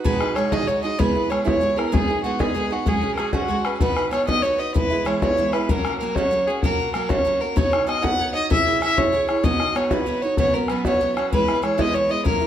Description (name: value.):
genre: celtic folk, Celtic slide.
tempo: 128 BPM (dotted quarters).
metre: 12/8.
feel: straight.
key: B major.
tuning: A4 = 440 Hz.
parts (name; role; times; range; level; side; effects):
dark fiddle; melody; 0.0-12.5 s; F#4 to F#5; -22 LUFS; left 1 dB; none.
picked steel-string acoustic guitar; accompaniment; 0.0-12.5 s; F#2 to C#5; -25 LUFS; right 5 dB; none.
bodhran; percussion; 0.1-12.5 s; none; -24 LUFS; left 2 dB; none.
room: light reverb.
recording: close, detailed microphones.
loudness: -18 LUFS.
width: side -10 dB against mid.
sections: 0.1-12.5 A section.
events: none.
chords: 0.1 B6; 1.0 C#m7; 1.9 G#m; 2.9 F#sus2; 3.8 B; 4.7 E; 5.7 F#; 7.6 Badd9; 8.5 C#m; 9.4 Badd9; 10.4 F#sus4; 11.3 E.